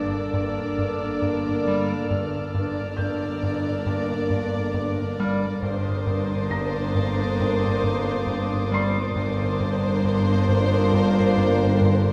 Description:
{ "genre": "cinematic", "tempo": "68 BPM", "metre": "4/4", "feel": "straight", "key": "G minor", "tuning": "A4 = 441 Hz", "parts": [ { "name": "warm chamber violin section", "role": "melody", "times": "0.0-12.1 s", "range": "C5 to D5", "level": "-33 LUFS", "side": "equal", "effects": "none" }, { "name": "dark studio violin section", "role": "second line", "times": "0.0-12.1 s", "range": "Bb4", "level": "-33 LUFS", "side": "equal", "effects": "none" }, { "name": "warm chamber viola section", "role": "accompaniment", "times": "0.0-12.1 s", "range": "D4", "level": "-36 LUFS", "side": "equal", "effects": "none" }, { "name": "mellow French horn section", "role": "sustained chords", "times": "0.0-12.1 s", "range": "Bb3 to F4", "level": "-34 LUFS", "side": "equal", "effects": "none" }, { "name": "mellow trombone section", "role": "sustained chords", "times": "0.0-12.1 s", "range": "D3 to Bb3", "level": "-36 LUFS", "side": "equal", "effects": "none" }, { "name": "gritty driven synth bass", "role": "riff", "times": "0.0-12.1 s", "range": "G2 to G3", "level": "-30 LUFS", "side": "equal", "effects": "none" }, { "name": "dark chamber cello section", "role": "bass", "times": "0.0-12.1 s", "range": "G2", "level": "-30 LUFS", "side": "equal", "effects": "none" }, { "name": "warm chamber double bass section", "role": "bass", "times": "0.0-12.1 s", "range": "G1", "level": "-31 LUFS", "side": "equal", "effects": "none" }, { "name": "impact", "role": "sound effects", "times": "0.0-2.1 s", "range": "none", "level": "barely audible", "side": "none", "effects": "none" }, { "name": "felt-muted upright piano", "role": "texture", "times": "0.0-12.1 s", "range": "F5 to C7", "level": "-39 LUFS", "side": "equal", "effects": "none" }, { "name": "warm chamber violin section", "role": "texture", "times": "0.0-12.1 s", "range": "D6 to A6", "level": "-40 LUFS", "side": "equal", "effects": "none" } ], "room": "wet church reverb, RT60 2.8 s", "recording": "recorded in a church or concert hall", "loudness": "-23 LUFS", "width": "mono", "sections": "0.0-12.1 A section", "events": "impact 0.0-2.1", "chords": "0.0 Gm; 5.6 Bbadd9/G" }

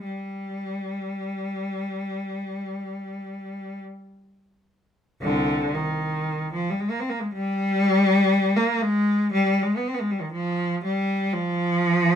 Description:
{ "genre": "classical, free, expressive piece for unaccompanied cello", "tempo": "38-61 BPM", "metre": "4/4", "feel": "rubato", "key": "unclear", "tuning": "A4 = 439 Hz", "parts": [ { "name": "rich cello", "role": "solo", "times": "0.0-12.2 s", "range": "C2 to C4", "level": "-22 LUFS", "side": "equal", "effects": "none" } ], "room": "light reverb", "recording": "close, detailed microphones", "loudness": "-22 LUFS", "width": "side -8 dB against mid", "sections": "0.0-5.2 A section; 5.2-12.2 B section", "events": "none", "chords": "none" }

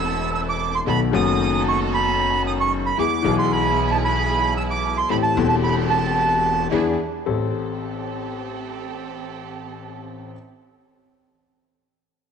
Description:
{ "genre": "tango", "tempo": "113 BPM", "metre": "4/4", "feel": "rubato", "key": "A minor", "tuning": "A4 = 436 Hz", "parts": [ { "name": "bandoneon", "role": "melody", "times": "0.0-6.7 s", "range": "A5 to E6", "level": "-22 LUFS", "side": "right 4 dB", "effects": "cassette tape" }, { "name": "warm grand piano", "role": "accompaniment", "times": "0.0-10.3 s", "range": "E1 to A4", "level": "-23 LUFS", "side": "left 8 dB", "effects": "cassette tape" }, { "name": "rich chamber string section", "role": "stabs", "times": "0.0-10.3 s", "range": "B3 to A4", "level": "-30 LUFS", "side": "right 12 dB", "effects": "cassette tape" }, { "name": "upright bass", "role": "bass", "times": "0.0-7.5 s", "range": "E1 to E2", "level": "-27 LUFS", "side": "right 3 dB", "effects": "none" } ], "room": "moderate lush hall reverb, RT60 2.5 s", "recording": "home recording on cassette", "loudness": "-18 LUFS", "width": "side -7 dB against mid", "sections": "0.0-7.3 A section; 7.3-11.5 B section", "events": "none", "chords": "0.0 Am; 0.9 B7; 3.0 E; 5.1 Am7; 6.7 E7; 7.3 Am7" }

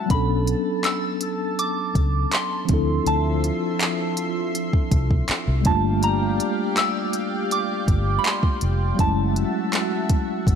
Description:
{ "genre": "contemporary R&B", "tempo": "81 BPM", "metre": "4/4", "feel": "straight", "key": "unclear", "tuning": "A4 = 440 Hz", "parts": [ { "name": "soft synth bell", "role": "melody", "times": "0.0-10.6 s", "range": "A5 to E6", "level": "-27 LUFS", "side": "right 1 dB", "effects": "chorus, phaser, ping-pong delay" }, { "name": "mellow tine electric piano", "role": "accompaniment", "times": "0.0-10.6 s", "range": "F3 to A4", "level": "-25 LUFS", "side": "equal", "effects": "medium stereo tremolo" }, { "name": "lush unison pad", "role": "sustained chords", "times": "0.0-10.6 s", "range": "F3 to C6", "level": "-30 LUFS", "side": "equal", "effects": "chorus, sidechain pumping" }, { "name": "vintage muted fingered electric bass", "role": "bass", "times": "0.1-10.6 s", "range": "F1 to D2", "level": "-23 LUFS", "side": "equal", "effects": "none" }, { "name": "smooth R&B drum kit", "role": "drums", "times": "0.1-10.6 s", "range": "handclaps, hi-hat, kick drum", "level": "-22 LUFS", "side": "equal", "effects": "none" } ], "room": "light reverb, digital ambience", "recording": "none", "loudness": "-20 LUFS", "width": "side -7 dB against mid", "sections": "0.1-10.6 A section", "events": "none", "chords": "0.1 Bm9; 2.7 Dm9; 5.7 Gm9; 9.0 F#m9" }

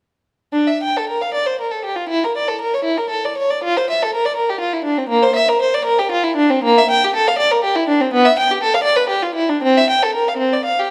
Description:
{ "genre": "classical, baroque-style suite movement for unaccompanied violin", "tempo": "70-83 BPM (dotted quarters)", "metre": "6/8", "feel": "rubato", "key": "D minor", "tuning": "A4 = 441 Hz", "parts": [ { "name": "warm violin", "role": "solo", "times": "0.5-10.9 s", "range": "Bb3 to G5", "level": "-17 LUFS", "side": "equal", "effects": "none" } ], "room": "moderate recital hall reverb, RT60 1.6 s", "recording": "none", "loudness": "-17 LUFS", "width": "mono", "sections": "0.5-10.9 A section", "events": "none", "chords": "none" }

